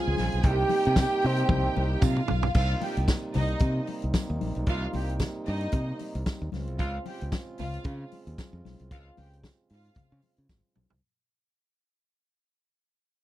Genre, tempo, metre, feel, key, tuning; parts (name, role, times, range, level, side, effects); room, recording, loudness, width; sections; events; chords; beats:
disco; 113 BPM; 4/4; swing 56% on 16ths; C phrygian; A4 = 440 Hz
wooden-headed alto flute; melody; 0.0-2.0 s; C4 to G4; -27 LUFS; right 2 dB
warm symphonic violin section; second line; 0.0-10.2 s; Eb4 to Ab5; -34 LUFS; right 2 dB
warm French horn section; sustained chords; 0.0-11.0 s; C3 to F4; -37 LUFS; right 2 dB
modern bright fingered electric bass; bass; 0.1-11.0 s; Ab1 to Db3; -28 LUFS; equal
vintage drum kit; drums; 0.2-11.0 s; crash cymbal, hi-hat, kick drum, snare drum, toms; -26 LUFS; equal
congas; percussion; 0.2-10.9 s; -37 LUFS; left 8 dB
tambourine; percussion; 1.0-10.6 s; -45 LUFS; right 26 dB
little or no reverb; dry, close 1970s-style studio recording; -25 LUFS; side -14 dB against mid
0.0-2.5 A section; 2.5-11.0 B section
drum fill 1.5-2.5, 10.5-11.0; fade-out 2.5-11.0
0.4 Cm7; 6.5 Dbmaj7
| 0.43 0.96 1.49 2.02 | 2.55 3.08 3.61 4.14 | 4.67 5.20 5.72 6.25 | 6.78 7.31 7.84 8.37 | 8.90 9.43 9.96 10.49